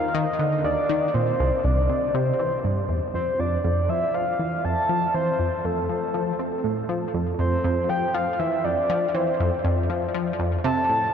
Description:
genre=ambient, sequencer-driven space music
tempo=120 BPM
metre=4/4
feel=straight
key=F major from 3.1 s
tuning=A4 = 440 Hz
part: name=soft octave-layered synth lead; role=melody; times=0.0-11.1 s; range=A4 to A5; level=-24 LUFS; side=equal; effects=chorus, tape echo
part: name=tight sequenced synth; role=riff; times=0.0-11.1 s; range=C2 to C4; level=-24 LUFS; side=equal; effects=chorus, tape echo
room=wet huge ambient reverb, RT60 8.1 s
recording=dark, warm production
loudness=-21 LUFS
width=side -7 dB against mid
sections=0.0-3.1 A section; 3.1-11.1 B section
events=none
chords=0.0 N.C.; 1.1 C; 3.1 F

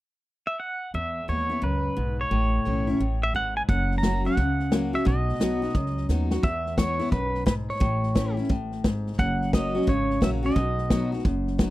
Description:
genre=honky-tonk and classic country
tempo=175 BPM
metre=4/4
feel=swing 64% on 8ths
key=E major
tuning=A4 = 439 Hz
part: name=pedal steel guitar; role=melody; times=0.5-11.1 s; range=B4 to A#5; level=-29 LUFS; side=right 1 dB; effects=none
part: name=picked steel-string acoustic guitar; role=accompaniment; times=0.9-11.7 s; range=E2 to F#4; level=-28 LUFS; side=left 1 dB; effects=none
part: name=upright bass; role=bass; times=0.9-11.7 s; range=F#1 to E2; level=-28 LUFS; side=equal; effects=none
part: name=natural country drum kit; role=drums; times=3.7-11.7 s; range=hi-hat, kick drum, snare drum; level=-24 LUFS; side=equal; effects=none
room=small room ambience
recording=dry, close 1970s-style studio recording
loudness=-23 LUFS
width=side -16 dB against mid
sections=0.9-6.4 A section; 6.4-11.7 B section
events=drum fill 6.1-6.4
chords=0.0 N.C.; 0.9 E; 2.3 A; 3.7 F#; 5.1 B; 6.4 E; 7.8 A; 9.2 F#; 10.6 B

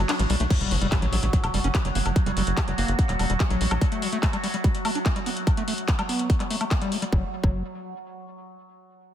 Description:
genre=psychedelic trance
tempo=145 BPM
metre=4/4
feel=straight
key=unclear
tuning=A4 = 440 Hz
part: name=overtone-sweeping drone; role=sustained chords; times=0.0-7.2 s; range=F#3 to F#4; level=-31 LUFS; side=right 2 dB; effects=chorus, built-in reverb, sidechain pumping
part: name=tight sequencer bass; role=bass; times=0.0-3.8, 7.1-7.6 s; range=E1 to B1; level=-26 LUFS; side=equal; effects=tube saturation
part: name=overdriven acid bass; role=riff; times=0.1-7.6 s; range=E3 to G4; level=-30 LUFS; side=moving between left 5 dB and right 4 dB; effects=auto-pan, sidechain pumping, ping-pong delay
part: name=techno drum kit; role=drums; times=0.1-7.1 s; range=crash cymbal, handclaps, hi-hat, ride cymbal, woodblock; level=-30 LUFS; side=left 2 dB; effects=none
part: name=electronic kick drum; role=drums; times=0.5-7.5 s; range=none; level=-23 LUFS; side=equal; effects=distortion, overdrive
part: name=impact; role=sound effects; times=0.5-2.2 s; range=none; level=-33 LUFS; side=equal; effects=none
room=light reverb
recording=none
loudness=-22 LUFS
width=side -10 dB against mid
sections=0.5-7.1 A section; 7.1-8.8 B section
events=break 0.0-0.5; impact 0.5-2.2; filter sweep on acid bass 0.5-7.1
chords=0.0 G5; 0.5 F#5; 3.8 N.C.

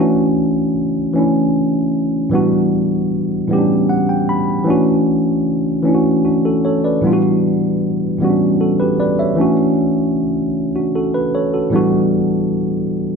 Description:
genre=R&B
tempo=51 BPM (dotted quarters)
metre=6/8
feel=straight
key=D major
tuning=A4 = 441 Hz
part: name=tine electric piano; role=solo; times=0.0-13.2 s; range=A2 to B5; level=-14 LUFS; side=equal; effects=none
room=wet large studio reverb, RT60 1.2 s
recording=band playing live in one room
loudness=-14 LUFS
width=side -5 dB against mid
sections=0.0-13.2 A section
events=tine electric piano fill 3.5-4.7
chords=0.0 Dmaj9; 2.3 A13sus4; 4.7 Dmaj9; 7.0 A13sus4; 9.4 Dmaj9; 11.7 A13sus4

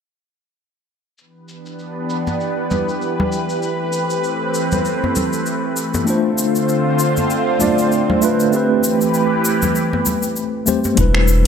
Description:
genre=sunset chillout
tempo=98 BPM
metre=4/4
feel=swing 57% on 16ths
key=A minor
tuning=A4 = 442 Hz
part: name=lush unison pad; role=sustained chords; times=1.6-10.9 s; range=D3 to C5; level=-19 LUFS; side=equal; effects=chorus, phaser
part: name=deep house drum kit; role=drums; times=1.2-11.4 s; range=finger snaps, hi-hat, shaker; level=-25 LUFS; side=left 3 dB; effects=overdrive, low-pass filter on perc, low-pass filter on hats, low-pass filter on snare, low-pass filter on room
part: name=congas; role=percussion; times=2.3-11.0 s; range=none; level=-23 LUFS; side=left 1 dB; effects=none
part: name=mellow tine electric piano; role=accompaniment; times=6.0-11.5 s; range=G3 to D5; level=-17 LUFS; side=moving between left 6 dB and right 4 dB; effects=medium stereo tremolo, auto-pan, digital delay
part: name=warm sub bass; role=bass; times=11.0-11.5 s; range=E1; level=-14 LUFS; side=equal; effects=none
part: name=electronic kick drum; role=drums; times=11.0-11.1 s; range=none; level=-22 LUFS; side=equal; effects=overdrive
part: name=wind-like tuned noise texture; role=texture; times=11.1-11.5 s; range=E6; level=-41 LUFS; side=right 6 dB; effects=none
room=moderate plate reverb, RT60 1.9 s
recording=bright 1980s-style digital production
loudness=-15 LUFS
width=side -7 dB against mid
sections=1.2-11.0 A section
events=filter sweep on analog synth pad 1.2-11.0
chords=1.2 Em7; 3.6 Am9; 6.1 Dm7; 8.5 Am9

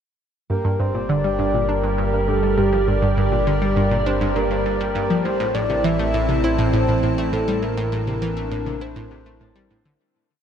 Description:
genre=ambient, sequencer-driven space music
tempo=101 BPM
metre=4/4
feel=straight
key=G dorian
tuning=A4 = 439 Hz
part: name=breathy flute-like synth lead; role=melody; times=0.5-9.7 s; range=G4 to E5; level=-24 LUFS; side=left 1 dB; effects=analog chorus, ping-pong delay
part: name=evolving wavetable pad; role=sustained chords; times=0.9-10.0 s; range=G3 to A5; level=-26 LUFS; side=right 1 dB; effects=chorus, built-in reverb
part: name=concert harp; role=arpeggios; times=0.5-10.4 s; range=E4 to C6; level=-31 LUFS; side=moving between left 5 dB and right 4 dB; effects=auto-pan, ping-pong delay
part: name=analog pluck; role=riff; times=0.5-9.9 s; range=G2 to E4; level=-23 LUFS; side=right 1 dB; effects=chorus, ping-pong delay
part: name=fat analog bass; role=bass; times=0.5-10.0 s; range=G1 to A1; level=-26 LUFS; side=equal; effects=none
room=moderate huge ambient reverb, RT60 8.2 s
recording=dark, warm production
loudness=-18 LUFS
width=side -8 dB against mid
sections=0.5-10.0 A section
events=fade-out 6.8-10.0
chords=0.5 Gm; 5.2 Am

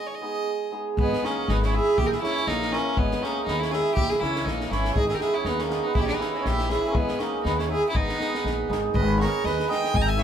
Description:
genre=balkan folk, Balkan wedding band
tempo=121 BPM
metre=2/4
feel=swing 54% on 16ths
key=G# harmonic minor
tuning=A4 = 441 Hz
part: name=clear violin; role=melody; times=0.0-10.2 s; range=B3 to A#5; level=-27 LUFS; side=equal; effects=none
part: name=hammered dulcimer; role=accompaniment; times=0.0-10.2 s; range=D#3 to G#4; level=-29 LUFS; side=right 4 dB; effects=none
part: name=mellow accordion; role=second line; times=1.0-10.2 s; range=G#3 to G5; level=-30 LUFS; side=right 2 dB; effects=none
part: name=upright bass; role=bass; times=1.0-10.2 s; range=G#1 to D#2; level=-28 LUFS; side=left 1 dB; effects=none
part: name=compact cocktail drum kit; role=percussion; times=1.0-10.2 s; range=kick drum, snare drum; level=-30 LUFS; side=left 1 dB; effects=none
room=moderate stone room reverb, RT60 1.2 s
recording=band playing live in one room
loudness=-22 LUFS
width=side -9 dB against mid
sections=1.0-8.9 A section; 8.9-10.2 B section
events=break 0.0-1.0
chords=0.0 G#m; 2.0 A#dim; 3.0 G#m; 4.0 A#dim; 5.0 G#m; 6.0 A#dim; 6.9 G#m

